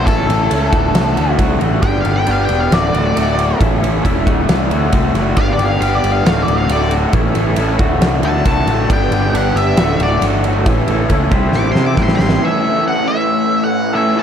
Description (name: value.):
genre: classic rock.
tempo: 136 BPM.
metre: 4/4.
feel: straight.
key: D major.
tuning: A4 = 440 Hz.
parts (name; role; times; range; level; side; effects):
octave-fuzz lead guitar; melody; 0.0-14.2 s; A4 to D6; -20 LUFS; left 1 dB; wah, distortion.
string machine, full ensemble; sustained chords; 0.0-14.2 s; G3 to D5; -24 LUFS; right 1 dB; ensemble chorus.
raw garage guitar; riff; 0.0-14.2 s; D2 to C5; -17 LUFS; left 1 dB; overdrive.
fuzz picked electric bass; bass; 0.0-12.4 s; D1 to C3; -18 LUFS; equal; overdrive.
big rock drum kit; drums; 0.1-12.4 s; kick drum, ride cymbal, snare drum; -18 LUFS; equal; none.
room: light reverb, small room ambience.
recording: none.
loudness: -12 LUFS.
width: side -8 dB against mid.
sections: 0.0-12.4 A section; 12.4-14.2 B section.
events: half time 0.0-12.4; lead electric guitar solo 0.0-12.4; drum fill 11.5-12.4.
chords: 0.1 A; 0.7 D; 1.8 G; 2.7 D; 3.6 A; 4.3 D; 5.4 G; 6.3 D; 7.1 A; 7.8 D; 8.9 G; 9.8 D; 10.7 A; 11.3 C; 12.4 A.